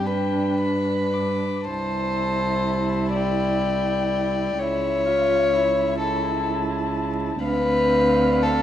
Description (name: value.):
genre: classical, slow romantic movement for string quartet.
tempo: 37-43 BPM (dotted quarters).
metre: 6/8.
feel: rubato.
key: C major.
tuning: A4 = 441 Hz.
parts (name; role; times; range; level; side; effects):
dark violin; melody; 0.0-8.6 s; E5 to D6; -31 LUFS; left 6 dB; none.
warm violin; second line; 0.0-8.6 s; A4 to D5; -23 LUFS; left 2 dB; none.
dark viola; accompaniment; 0.0-8.6 s; C4 to F4; -28 LUFS; right 2 dB; none.
rich cello; bass; 0.0-8.6 s; C2 to G2; -26 LUFS; right 3 dB; none.
room: moderate recital hall reverb, RT60 1.6 s.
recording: vinyl crackle.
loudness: -20 LUFS.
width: side -11 dB against mid.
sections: 0.0-8.6 A section.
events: none.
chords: 0.1 G; 1.7 C; 4.6 A/C#; 7.4 Dm7.